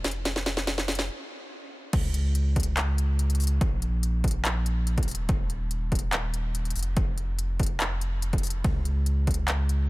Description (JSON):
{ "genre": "future bass", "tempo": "143 BPM", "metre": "4/4", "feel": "half-time", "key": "unclear", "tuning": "A4 = 440 Hz", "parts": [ { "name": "saturated sub bass", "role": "bass", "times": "0.0-9.9 s", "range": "Eb1 to Db2", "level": "-26 LUFS", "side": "equal", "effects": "sidechain pumping" }, { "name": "trap drum kit", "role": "drums", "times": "0.0-9.8 s", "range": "crash cymbal, handclaps, hi-hat, ride cymbal, snare drum", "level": "-31 LUFS", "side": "equal", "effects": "high-pass filter on snare, high-pass filter on hats, high-pass filter on cymbals" }, { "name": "electronic kick drum", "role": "drums", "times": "1.9-9.4 s", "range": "none", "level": "-26 LUFS", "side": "equal", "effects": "overdrive" } ], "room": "little or no reverb", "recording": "none", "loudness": "-24 LUFS", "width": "side -21 dB against mid", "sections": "0.0-1.9 A section; 1.9-9.9 B section", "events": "build-up 0.0-1.9; drum fill 0.0-1.1; stop 1.1-1.9; drop 1.9-9.9", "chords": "none" }